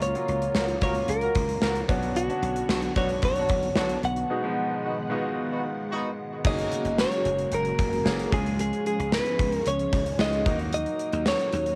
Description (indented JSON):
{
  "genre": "1980s-style pop",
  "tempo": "112 BPM",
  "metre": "4/4",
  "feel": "straight",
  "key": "F# major",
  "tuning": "A4 = 440 Hz",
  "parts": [
    { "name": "direct-recorded clean electric guitar", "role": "melody", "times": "0.0-11.8 s", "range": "F#4 to F#5", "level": "-30 LUFS", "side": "equal", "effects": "cassette tape" },
    { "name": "bright concert grand piano", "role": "accompaniment", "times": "0.0-11.8 s", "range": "B2 to A#4", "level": "-35 LUFS", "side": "equal", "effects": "cassette tape" },
    { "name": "string machine, full ensemble", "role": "sustained chords", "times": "0.0-11.8 s", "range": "C#3 to F#5", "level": "-36 LUFS", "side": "equal", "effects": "ensemble chorus, cassette tape" },
    { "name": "dry thumbed slap bass", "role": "bass", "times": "0.0-11.7 s", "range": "F#1 to D#2", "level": "-34 LUFS", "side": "equal", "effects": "none" },
    { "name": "gated 80s drum kit", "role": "drums", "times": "0.0-11.8 s", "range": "crash cymbal, hi-hat, kick drum, snare drum, tambourine", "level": "-30 LUFS", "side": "equal", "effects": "cassette tape" },
    { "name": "warm horn section", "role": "stabs", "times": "0.6-6.1 s", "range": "F#3 to A#4", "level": "-37 LUFS", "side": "equal", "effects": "cassette tape, analog delay" },
    { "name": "marimba with hard mallets", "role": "second line", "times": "6.5-11.8 s", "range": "G#3 to D#4", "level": "-38 LUFS", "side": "equal", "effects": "none" }
  ],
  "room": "moderate booth ambience, RT60 0.2 s",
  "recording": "home recording on cassette",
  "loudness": "-26 LUFS",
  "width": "mono",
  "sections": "0.0-6.4 A section; 6.4-11.8 B section",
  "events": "break 4.3-6.4",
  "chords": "0.0 F#maj7/C#; 1.9 Bmadd9; 4.3 G#m7; 6.4 F#add9; 8.3 C#; 10.5 D#m"
}